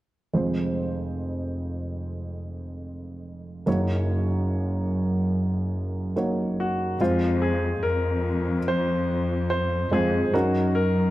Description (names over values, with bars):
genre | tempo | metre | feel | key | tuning
pop | 72 BPM | 4/4 | straight | unclear | A4 = 441 Hz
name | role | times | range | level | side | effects
dark upright piano | accompaniment | 0.3-11.1 s | F1 to Db5 | -26 LUFS | right 1 dB | none
clear concert grand piano | melody | 6.6-11.1 s | F4 to C5 | -26 LUFS | left 1 dB | none
muted studio cello section | bass | 7.0-11.1 s | F2 to Gb2 | -24 LUFS | left 1 dB | none
room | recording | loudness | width
light reverb | dark, warm production | -23 LUFS | side -16 dB against mid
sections
0.3-7.0 A section; 7.0-11.1 B section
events
none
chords
0.3 Fm; 3.7 Gb6; 7.0 Fm; 10.3 Gb6